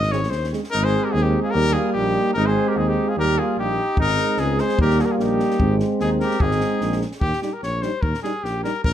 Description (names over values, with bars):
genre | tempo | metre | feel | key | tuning
balkan folk, Balkan brass band | 148 BPM | 2/4 | swing 54% on 16ths | Ab major | A4 = 439 Hz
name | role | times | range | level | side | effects
clear trumpet | melody | 0.0-8.9 s | G4 to Eb5 | -24 LUFS | left 2 dB | plate reverb
mellow tuba | bass | 0.0-8.9 s | Ab1 to Eb2 | -23 LUFS | equal | none
compact cocktail drum kit | percussion | 0.0-0.7, 4.0-8.9 s | kick drum, snare drum | -26 LUFS | equal | none
mellow French horn | accompaniment | 0.1-8.7 s | Bb3 to Eb4 | -27 LUFS | left 6 dB | none
warm euphonium | accompaniment | 0.1-8.7 s | G3 to Ab3 | -25 LUFS | right 6 dB | none
warm flugelhorn | second line | 0.7-7.0 s | Eb4 to Ab4 | -28 LUFS | right 2 dB | none
room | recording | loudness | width
moderate studio reverb, RT60 0.7 s | dark, warm production | -18 LUFS | side -10 dB against mid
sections
0.7-7.2 A section; 7.2-8.9 B section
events
none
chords
0.0 Ab; 1.5 Eb; 2.4 Ab; 3.2 Eb; 4.0 Ab; 4.8 Eb; 5.6 Ab; 7.2 Eb